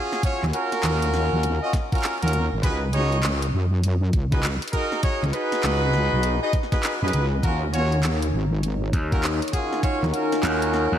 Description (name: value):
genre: glitch hop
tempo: 100 BPM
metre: 4/4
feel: swing 63% on 16ths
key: Eb minor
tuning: A4 = 437 Hz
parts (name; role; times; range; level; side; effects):
- bright horn section; stabs; 0.0-11.0 s; Db4 to Eb5; -25 LUFS; equal; sidechain pumping, ping-pong delay
- drum and bass drum kit; drums; 0.1-10.9 s; handclaps, hi-hat, snare drum; -31 LUFS; right 1 dB; none
- electronic kick drum; drums; 0.2-10.0 s; none; -23 LUFS; equal; none
- wobble bass; bass; 0.4-10.1 s; Ab1 to Gb2; -22 LUFS; equal; chorus
- warm analog pad; sustained chords; 7.4-11.0 s; Eb4 to Bb5; -28 LUFS; left 1 dB; chorus, vintage 12-bit sampler grit, sidechain pumping
- gritty slap bass; bass; 8.9-11.0 s; Eb2; -24 LUFS; equal; overdrive
room: moderate lush hall reverb, RT60 1.7 s, digital ambience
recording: dreamy mix soaked in reverb, vinyl crackle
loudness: -20 LUFS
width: side -10 dB against mid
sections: 0.0-11.0 A section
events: none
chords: 0.0 Ebm7; 2.6 Db9sus4; 7.4 Ebm7